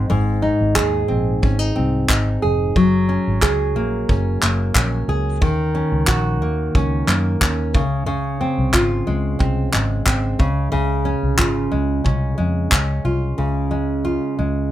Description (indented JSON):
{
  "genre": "acoustic pop",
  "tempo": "90 BPM",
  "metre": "4/4",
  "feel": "straight",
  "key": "Db major",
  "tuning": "A4 = 440 Hz",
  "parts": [
    { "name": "nylon-string guitar", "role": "accompaniment", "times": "0.0-14.7 s", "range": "Ab2 to Ab4", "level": "-20 LUFS", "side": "equal", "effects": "none" },
    { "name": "vintage muted fingered electric bass", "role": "bass", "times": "0.0-14.7 s", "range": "F1 to Gb2", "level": "-21 LUFS", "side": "equal", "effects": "none" },
    { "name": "soft brush drum kit", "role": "drums", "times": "0.8-12.9 s", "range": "handclaps, kick drum", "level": "-19 LUFS", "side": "equal", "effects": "none" }
  ],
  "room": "light reverb",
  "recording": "none",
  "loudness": "-16 LUFS",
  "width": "side -13 dB against mid",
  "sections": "0.0-13.4 A section; 13.4-14.7 B section",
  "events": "none",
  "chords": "0.0 Ab; 2.8 Gbadd9; 5.4 Ebm7; 7.7 Dbmaj7; 13.4 Db"
}